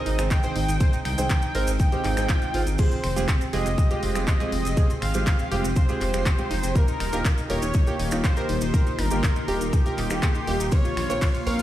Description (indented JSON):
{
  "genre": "progressive house",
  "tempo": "121 BPM",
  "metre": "4/4",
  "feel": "straight",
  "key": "Eb mixolydian",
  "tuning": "A4 = 440 Hz",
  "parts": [
    { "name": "wide unison lead", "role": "melody", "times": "0.0-11.6 s", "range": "G4 to G5", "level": "-30 LUFS", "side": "equal", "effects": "sidechain pumping, tape echo" },
    { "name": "evolving wavetable pad", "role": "sustained chords", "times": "0.0-11.6 s", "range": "C3 to Ab4", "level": "-33 LUFS", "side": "left 1 dB", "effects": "ensemble chorus, built-in reverb, phaser, vintage 12-bit sampler grit, sidechain pumping" },
    { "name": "analog pluck", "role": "arpeggios", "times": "0.0-11.6 s", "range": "C4 to Db5", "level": "-33 LUFS", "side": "equal", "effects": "chorus, sidechain pumping, digital delay" },
    { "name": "warm concert grand piano", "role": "stabs", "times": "0.0-11.6 s", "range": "Ab3 to C5", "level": "-31 LUFS", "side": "right 3 dB", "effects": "sidechain pumping" },
    { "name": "dark detuned saw bass", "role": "bass", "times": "0.1-11.6 s", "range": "Eb1 to C2", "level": "-27 LUFS", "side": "equal", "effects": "sidechain pumping" },
    { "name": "pop drum kit", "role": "drums", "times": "0.1-11.6 s", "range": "crash cymbal, finger snaps, handclaps, hi-hat, ride cymbal", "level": "-33 LUFS", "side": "equal", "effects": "overdrive" },
    { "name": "maracas", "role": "percussion", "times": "0.2-11.6 s", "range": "none", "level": "-39 LUFS", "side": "right 2 dB", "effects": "none" },
    { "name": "electronic kick drum", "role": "drums", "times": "0.3-11.3 s", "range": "none", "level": "-21 LUFS", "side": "equal", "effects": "none" },
    { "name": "swell", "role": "sound effects", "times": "2.0-2.8 s", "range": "none", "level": "-41 LUFS", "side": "equal", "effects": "none" },
    { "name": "backwards swelling texture", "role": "texture", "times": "4.5-11.6 s", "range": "C6", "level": "-44 LUFS", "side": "right 2 dB", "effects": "none" }
  ],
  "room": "light reverb",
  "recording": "played on a big sound system in a bare room, stone room reverb",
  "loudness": "-21 LUFS",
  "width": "side -13 dB against mid",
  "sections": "0.0-11.6 A section",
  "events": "none",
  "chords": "0.0 Ab; 2.8 Fmadd9; 6.8 Ebadd9; 10.7 Bbmadd9",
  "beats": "0.31 | 0.81 1.30 1.80 2.29 | 2.79 3.28 3.78 4.28 | 4.77 5.27 5.76 6.26 | 6.75 7.25 7.75 8.24 | 8.74 9.23 9.73 10.23 | 10.72 11.22"
}